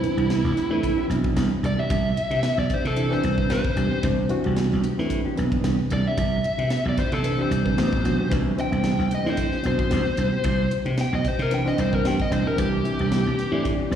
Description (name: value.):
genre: electric jazz fusion.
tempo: 112 BPM.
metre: 4/4.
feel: swing 54% on 16ths.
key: C lydian.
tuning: A4 = 436 Hz.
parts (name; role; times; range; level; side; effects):
dark smooth lead guitar; melody; 0.0-13.6 s; E4 to G5; -27 LUFS; left 1 dB; overdrive, slapback echo, tape echo.
reed electric piano; accompaniment; 0.0-14.0 s; E3 to D5; -27 LUFS; left 2 dB; spring reverb, slapback echo.
mellow electric guitar; stabs; 0.0-14.0 s; E3 to G4; -34 LUFS; right 1 dB; wide subtle chorus, slapback echo, tape echo.
crisp fusion drum kit; drums; 0.0-14.0 s; hi-hat, kick drum, ride cymbal, snare drum; -29 LUFS; equal; none.
slap bass; bass; 0.2-14.0 s; A1 to C3; -24 LUFS; right 2 dB; none.
room: light reverb, studio ambience.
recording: live gig heard through the venue's PA, recital hall reverb, small room ambience.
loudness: -20 LUFS.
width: side -9 dB against mid.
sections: 0.0-14.0 A section.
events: lead electric guitar solo 0.0-14.0.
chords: 0.0 Cmaj9.